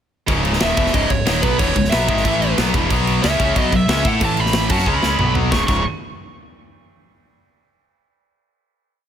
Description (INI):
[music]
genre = heavy metal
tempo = 183 BPM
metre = 4/4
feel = straight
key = C# minor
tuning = A4 = 440 Hz
[part]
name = distorted electric guitar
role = riff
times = 0.3-5.8 s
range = C#2 to A4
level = -22 LUFS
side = left 11 dB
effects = overdrive
[part]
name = scooped high-gain guitar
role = riff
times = 0.3-5.8 s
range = C#2 to A4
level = -23 LUFS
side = right 10 dB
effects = distortion
[part]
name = tight distorted guitar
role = riff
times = 0.3-5.8 s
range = C#2 to A4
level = -24 LUFS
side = right 1 dB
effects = distortion
[part]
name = growling fingered electric bass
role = bass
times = 0.3-5.8 s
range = C#1 to A2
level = -23 LUFS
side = equal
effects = overdrive
[part]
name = tight metal drum kit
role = drums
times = 0.3-5.8 s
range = crash cymbal, kick drum, snare drum, toms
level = -21 LUFS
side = equal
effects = none
[part]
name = high-gain lead guitar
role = melody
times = 0.6-5.8 s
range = B4 to C#6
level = -22 LUFS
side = right 1 dB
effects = distortion
[sound]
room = little or no reverb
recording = none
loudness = -15 LUFS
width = side -9 dB against mid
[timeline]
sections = 0.3-5.5 riff; 5.5-6.8 final chord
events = drum fill 4.9-5.5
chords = 0.3 C#m; 2.2 A5; 2.6 Esus2; 2.9 B5; 4.2 A5; 4.7 B5; 5.5 C#5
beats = | 0.28 0.61 0.94 1.27 | 1.60 1.92 2.25 2.58 | 2.90 3.23 3.56 3.88 | 4.21 4.54 4.87 5.19 | 5.52